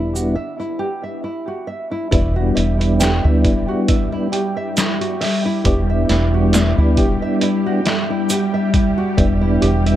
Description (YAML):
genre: trip hop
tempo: 68 BPM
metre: 4/4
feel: swing 55% on 16ths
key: E minor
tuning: A4 = 440 Hz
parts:
  - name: percussive tonewheel organ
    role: accompaniment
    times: 0.0-10.0 s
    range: G3 to E4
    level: -21 LUFS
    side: equal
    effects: chorus vibrato, slow rotary speaker, tremolo, vintage 12-bit sampler grit, tape echo
  - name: string machine, cellos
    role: sustained chords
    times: 0.0-10.0 s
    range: G3 to G4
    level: -22 LUFS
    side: left 1 dB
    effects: ensemble chorus
  - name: nylon-string guitar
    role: arpeggios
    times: 0.0-10.0 s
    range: E4 to E5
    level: -24 LUFS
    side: right 1 dB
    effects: analog delay
  - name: deep dub fingered electric bass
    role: bass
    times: 0.0-10.0 s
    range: E1 to D2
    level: -17 LUFS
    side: equal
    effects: none
  - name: egg shaker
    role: percussion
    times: 0.2-8.5 s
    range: none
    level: -28 LUFS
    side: right 3 dB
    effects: none
  - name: trip hop sampler-style drum kit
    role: drums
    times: 2.1-10.0 s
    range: hi-hat, kick drum, snare drum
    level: -20 LUFS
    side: equal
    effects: none
room: light reverb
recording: echo-heavy mix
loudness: -15 LUFS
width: side -12 dB against mid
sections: 0.0-2.1 A section; 2.1-10.0 B section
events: break 0.4-2.1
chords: 0.0 Em7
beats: 0.36 1.24 | 2.12 3.00 3.88 4.77 | 5.65 6.53 7.42 8.30 | 9.18